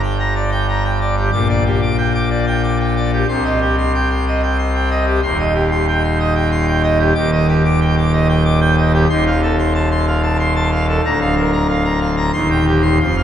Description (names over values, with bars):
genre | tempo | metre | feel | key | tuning
classical, organ toccata | 93 BPM | 3/4 | straight | Bb major from 7.2 s | A4 = 441 Hz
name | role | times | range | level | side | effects
pipe organ, full organ | solo | 0.0-13.2 s | D1 to D6 | -14 LUFS | equal | none
room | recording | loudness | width
wet church reverb, RT60 2.6 s | recorded in a church or concert hall | -14 LUFS | side -10 dB against mid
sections
0.0-13.2 A section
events
none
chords
0.0 Gm; 1.3 Gm/Bb; 3.3 Cm; 5.2 Cm/Eb; 7.2 Ebmaj7; 9.1 F7/Eb; 11.0 Bb/D; 12.3 Cm/Eb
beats
0.03 0.68 | 1.33 1.98 2.63 | 3.29 3.94 4.58 | 5.23 5.88 6.52 | 7.16 7.81 8.45 | 9.10 9.74 10.39 | 11.04 11.68 12.34 | 13.01